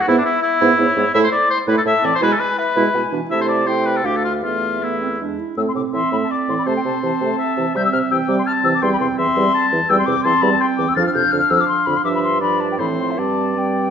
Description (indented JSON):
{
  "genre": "quick classical-period movement for wind quintet",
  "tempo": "166 BPM",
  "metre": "3/4",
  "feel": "rubato",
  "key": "A minor, C major from 9.9 s",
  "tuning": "A4 = 440 Hz",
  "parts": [
    { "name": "concert flute", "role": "melody", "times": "0.0-13.9 s", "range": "C5 to A6", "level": "-21 LUFS", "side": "left 6 dB", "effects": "none" },
    { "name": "warm oboe", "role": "second line", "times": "0.0-13.9 s", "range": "D4 to A5", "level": "-20 LUFS", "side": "left 2 dB", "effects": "none" },
    { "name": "clear clarinet", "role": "accompaniment", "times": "0.1-13.9 s", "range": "B3 to E4", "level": "-23 LUFS", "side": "right 10 dB", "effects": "none" },
    { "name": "warm French horn", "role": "accompaniment", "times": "0.1-13.9 s", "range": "C3 to B3", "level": "-24 LUFS", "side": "right 1 dB", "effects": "none" },
    { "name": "dark bassoon", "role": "bass", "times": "0.1-13.9 s", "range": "D2 to C3", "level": "-24 LUFS", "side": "right 2 dB", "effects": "none" }
  ],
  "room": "wet recital hall reverb, RT60 1.7 s",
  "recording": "nothing above 7.6 kHz",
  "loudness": "-15 LUFS",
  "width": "side -8 dB against mid",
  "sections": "0.0-5.6 A section; 5.6-13.9 B section",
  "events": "none",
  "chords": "0.1 E; 1.1 Am; 2.2 E; 3.3 Am/C; 4.0 Dm; 4.4 Esus4; 5.2 E; 5.6 Am; 6.7 Am/C; 7.8 C; 8.8 C/E; 11.0 Dm7/F; 12.0 G5; 12.8 Am; 13.2 Gsus4",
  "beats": "| 0.08 0.43 0.79 | 1.15 1.50 1.86 | 2.22 2.58 2.94 | 3.30 3.67 4.04 | 4.43 4.82 5.20 | 5.58 5.94 6.30 | 6.67 7.03 7.39 | 7.75 8.11 8.46 | 8.82 9.18 9.54 | 9.90 10.25 10.61 | 10.96 11.33 11.69 | 12.05 12.41 12.79 | 13.18 13.57"
}